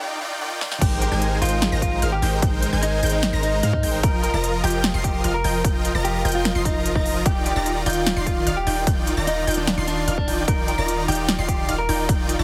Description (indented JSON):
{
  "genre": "future bass",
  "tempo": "149 BPM",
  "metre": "4/4",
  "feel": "half-time",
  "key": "Eb major",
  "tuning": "A4 = 440 Hz",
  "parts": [
    { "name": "supersaw chords", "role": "riff", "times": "0.0-12.4 s", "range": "Eb3 to C6", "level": "-27 LUFS", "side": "equal", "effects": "sidechain pumping" },
    { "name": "big-room dance drum kit", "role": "drums", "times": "0.6-12.4 s", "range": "crash cymbal, hi-hat, snare drum", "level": "-29 LUFS", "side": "equal", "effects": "overdrive" },
    { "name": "electric guitar at the edge of break-up", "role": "melody", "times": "0.8-12.1 s", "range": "D4 to Bb4", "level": "-29 LUFS", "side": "equal", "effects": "sidechain pumping, digital delay" },
    { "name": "unison pluck", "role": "arpeggios", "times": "0.8-12.4 s", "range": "F6 to C7", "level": "-35 LUFS", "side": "equal", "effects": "sidechain pumping" },
    { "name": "warm 808-style bass", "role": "bass", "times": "0.8-12.4 s", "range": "Eb1 to Ab2", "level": "-28 LUFS", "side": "equal", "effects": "sidechain pumping" },
    { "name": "electronic kick drum", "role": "drums", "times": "0.8-12.2 s", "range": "none", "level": "-25 LUFS", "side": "equal", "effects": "overdrive" }
  ],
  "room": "light reverb, digital ambience",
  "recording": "heavily compressed radio sound, multiband compression, high-pass filter",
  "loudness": "-21 LUFS",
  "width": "mono",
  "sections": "0.8-12.4 A section",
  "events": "break 0.0-0.8; drum fill 0.6; drop 0.8-12.4",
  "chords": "0.0 Ebmaj9; 0.8 Abmaj9; 4.0 F9sus4; 7.3 Ebmaj9",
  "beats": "0.01 0.41 | 0.81 1.22 1.62 2.02 | 2.42 2.83 3.23 3.63 | 4.04 4.44 4.84 5.24 | 5.65 6.05 6.45 6.85 | 7.26 7.66 8.06 8.46 | 8.87 9.27 9.67 10.08 | 10.48 10.88 11.28 11.69 | 12.09"
}